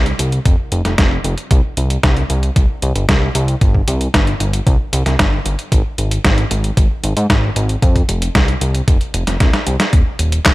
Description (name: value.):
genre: italo disco.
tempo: 114 BPM.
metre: 4/4.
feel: straight.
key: unclear.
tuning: A4 = 445 Hz.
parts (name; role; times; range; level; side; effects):
fat analog bass; bass; 0.0-10.5 s; Eb1 to Ab2; -17 LUFS; equal; tube saturation.
detuned 8-bit digital drum machine; drums; 0.1-10.5 s; handclaps, hi-hat, snare drum; -18 LUFS; equal; none.
electronic kick drum; drums; 0.5-10.5 s; none; -14 LUFS; equal; none.
room: little or no reverb.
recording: none.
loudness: -13 LUFS.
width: side -19 dB against mid.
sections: 0.0-9.9 A section.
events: drum fill 9.4-9.9.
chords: none.